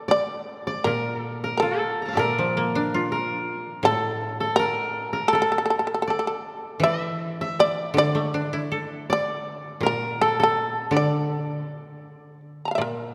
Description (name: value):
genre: japanese traditional, Japanese chamber music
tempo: 80 BPM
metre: 2/4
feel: uneven beats, rubato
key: D hirajoshi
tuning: A4 = 442 Hz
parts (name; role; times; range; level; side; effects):
- shamisen; melody; 0.0-13.1 s; A4 to Bb5; -26 LUFS; equal; none
- koto; second line; 0.0-12.5 s; A4 to Bb5; -30 LUFS; equal; none
- koto; accompaniment; 0.8-13.1 s; A2 to A4; -30 LUFS; equal; none
room: wet church reverb, RT60 3.4 s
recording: none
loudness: -24 LUFS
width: mono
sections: 0.9-12.8 A section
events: none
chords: none